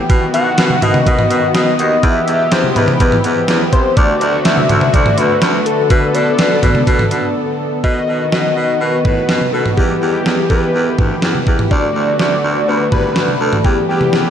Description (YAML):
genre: synth-pop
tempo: 124 BPM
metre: 4/4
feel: straight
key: unclear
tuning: A4 = 440 Hz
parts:
  - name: brassy analog pad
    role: sustained chords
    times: 0.0-14.3 s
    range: D3 to A4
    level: -19 LUFS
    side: equal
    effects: chorus
  - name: clear baritone saxophone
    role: bass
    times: 0.0-14.3 s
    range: C2 to B2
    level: -19 LUFS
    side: right 1 dB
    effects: none
  - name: gated 80s digital drum machine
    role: drums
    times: 0.1-14.2 s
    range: hi-hat, kick drum, snare drum, toms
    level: -16 LUFS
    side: equal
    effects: gated reverb, gated reverb snare
  - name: fat analog lead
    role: melody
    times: 0.3-14.3 s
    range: G4 to F#5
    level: -16 LUFS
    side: left 2 dB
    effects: diffuse ambient delay
room: wet huge ambient reverb, RT60 8.1 s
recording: dreamy mix soaked in reverb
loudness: -11 LUFS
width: side -9 dB against mid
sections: 0.0-7.8 A section; 7.8-14.3 B section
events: break 7.4-7.8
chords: 0.1 B; 2.0 Em; 4.0 D; 5.9 Bm7; 7.8 B; 9.8 Em; 11.7 D; 13.6 Em